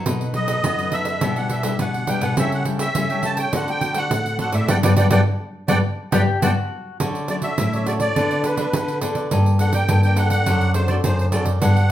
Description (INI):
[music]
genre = samba and choro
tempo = 104 BPM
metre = 4/4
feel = straight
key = G major, D major from 7.0 s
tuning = A4 = 440 Hz
[part]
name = cavaquinho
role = accompaniment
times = 0.0-11.9 s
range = D4 to Bb5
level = -28 LUFS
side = right 3 dB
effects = none
[part]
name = nylon-string guitar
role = accompaniment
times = 0.0-11.9 s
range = F#2 to A4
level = -27 LUFS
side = left 4 dB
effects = none
[part]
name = nylon-string guitar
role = bass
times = 0.0-11.9 s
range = F#2 to B3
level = -21 LUFS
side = equal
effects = none
[part]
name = pandeiro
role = percussion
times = 0.1-11.9 s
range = none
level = -25 LUFS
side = right 3 dB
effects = none
[part]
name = musette accordion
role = melody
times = 0.3-11.9 s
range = B4 to A5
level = -24 LUFS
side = right 1 dB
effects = none
[part]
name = mandolin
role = second line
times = 6.1-7.0 s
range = F#4 to G4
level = -25 LUFS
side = left 4 dB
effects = none
[sound]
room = wet large studio reverb, RT60 0.9 s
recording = band playing live in one room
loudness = -18 LUFS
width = side -12 dB against mid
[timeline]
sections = 0.0-7.0 A section; 7.0-11.9 B section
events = band accent 4.7-7.0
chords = 0.1 B7; 1.2 Em7/B; 2.4 A7/C#; 3.5 D7; 4.7 Gmaj7; 7.0 Dmaj7; 8.2 Bm7/D; 9.3 Gmadd9; 10.5 D7/F#